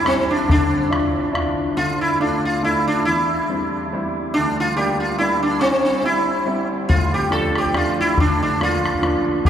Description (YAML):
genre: celtic folk, Celtic waltz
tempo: 140 BPM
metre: 3/4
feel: swing 56% on 8ths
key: D minor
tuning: A4 = 440 Hz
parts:
  - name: sitar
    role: melody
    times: 0.0-9.5 s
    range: C4 to A4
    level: -19 LUFS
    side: equal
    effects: none
  - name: bright upright piano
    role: accompaniment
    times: 0.0-9.5 s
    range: C2 to F4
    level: -23 LUFS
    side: right 1 dB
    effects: none
  - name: bodhran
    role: percussion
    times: 0.1-1.5, 6.9-9.5 s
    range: none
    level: -22 LUFS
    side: left 1 dB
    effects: none
room: wet cathedral reverb, RT60 6.5 s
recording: recorded in a church or concert hall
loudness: -17 LUFS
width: side -9 dB against mid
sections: 0.0-1.8 A section; 1.8-9.5 B section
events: none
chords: 0.5 Dmadd9; 1.8 Dm; 3.1 C/E; 4.3 Gm/D; 5.6 C; 6.9 Dm; 8.2 Bb/D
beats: 0.06 | 0.48 0.91 1.34 | 1.77 2.20 2.62 | 3.05 3.48 3.91 | 4.33 4.76 5.19 | 5.62 6.04 6.47 | 6.90 7.32 7.75 | 8.17 8.60 9.03 | 9.45